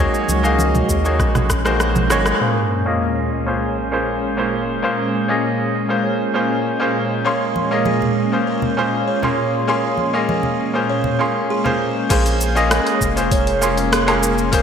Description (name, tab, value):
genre	sunset chillout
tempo	99 BPM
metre	4/4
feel	straight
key	Bb minor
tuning	A4 = 438 Hz
part	bright concert grand piano	accompaniment	0.0-14.6 s	Bb3 to C6	-19 LUFS	equal	auto-pan, low-pass filter, ping-pong delay
part	lush unison pad	sustained chords	0.0-14.6 s	Bb2 to Db4	-22 LUFS	equal	chorus, phaser
part	round analog bass	bass	0.0-2.3, 12.1-14.6 s	F1 to Eb2	-21 LUFS	equal	tube saturation
part	deep house drum kit	drums	0.1-2.4, 12.1-14.6 s	cabasa, crash cymbal, hi-hat, rim click, woodblock	-22 LUFS	equal	gated reverb
part	congas	percussion	0.3-2.1, 7.6-11.8 s	none	-26 LUFS	right 2 dB	none
part	electronic kick drum	drums	0.9-1.6, 12.1-14.6 s	none	-21 LUFS	equal	none
part	sub drop	sound effects	2.4-4.8 s	none	-25 LUFS	equal	none
part	buzzing kalimba	arpeggios	7.3-14.6 s	Ab4 to Db5	-25 LUFS	right 2 dB	ping-pong delay
room	wet lush hall reverb, RT60 2.0 s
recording	bright 1980s-style digital production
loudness	-16 LUFS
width	side -7 dB against mid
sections	0.0-2.4 A section; 2.4-12.1 B section; 12.1-14.6 C section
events	drum fill 1.2-2.4; band accent 2.3-2.6; impact 2.4-4.8; filter sweep on grand piano 2.4-12.1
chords	0.0 Ab9sus4; 2.4 Bbm7